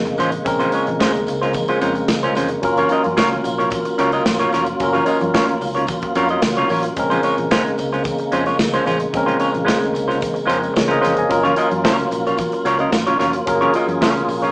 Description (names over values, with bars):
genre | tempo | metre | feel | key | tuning
disco | 111 BPM | 4/4 | straight | Bb minor | A4 = 441 Hz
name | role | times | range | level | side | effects
barky tine electric piano | accompaniment | 0.0-14.5 s | Gb3 to Ab5 | -21 LUFS | left 1 dB | none
tonewheel organ | sustained chords | 0.0-14.5 s | Db3 to Ab4 | -23 LUFS | equal | overdrive, chorus vibrato, slow rotary speaker
fingered electric bass | bass | 0.0-14.5 s | F1 to Bb2 | -31 LUFS | equal | none
semi-hollow electric guitar | accompaniment | 0.1-14.5 s | Ab3 to Eb5 | -19 LUFS | equal | none
modern studio drum kit | drums | 0.1-14.5 s | hi-hat, kick drum, snare drum | -23 LUFS | equal | none
congas | percussion | 0.1-14.5 s | none | -32 LUFS | equal | none
tambourine | percussion | 0.2-14.5 s | none | -36 LUFS | equal | none
room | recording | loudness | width
moderate large studio reverb, RT60 1.0 s | band playing live in one room, small speaker sound | -15 LUFS | side -26 dB against mid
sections
0.0-14.5 A section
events
none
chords
0.0 Bbm9; 2.6 Gbmaj7; 7.0 Bbm9; 11.3 Gbmaj7